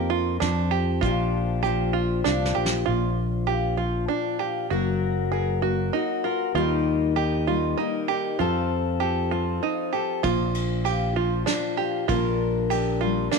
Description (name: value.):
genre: acoustic folk duo or small band.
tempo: 98 BPM.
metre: 3/4.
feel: straight.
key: Bb major.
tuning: A4 = 440 Hz.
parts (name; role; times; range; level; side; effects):
fingerpicked steel-string acoustic guitar; accompaniment; 0.0-13.4 s; Bb2 to Bb4; -27 LUFS; left 12 dB; none.
open-back banjo; arpeggios; 0.0-13.4 s; D4 to Ab4; -27 LUFS; right 12 dB; none.
fingered electric bass; bass; 0.0-13.3 s; Gb1 to F2; -26 LUFS; equal; none.
soft brush drum kit; drums; 0.4-2.8, 10.2-13.4 s; hi-hat, kick drum, ride cymbal, snare drum; -31 LUFS; equal; none.
room: light reverb, studio reverb.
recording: 1960s-style stereo with parts hard left and right.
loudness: -22 LUFS.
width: side -4 dB against mid.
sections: 0.0-2.9 A section; 2.9-13.4 B section.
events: drum fill 2.3-2.9.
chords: 0.4 Dmadd11/F; 1.0 Bb6; 2.9 Bb; 4.7 Gb; 6.6 Eb; 8.4 F; 10.2 Bb.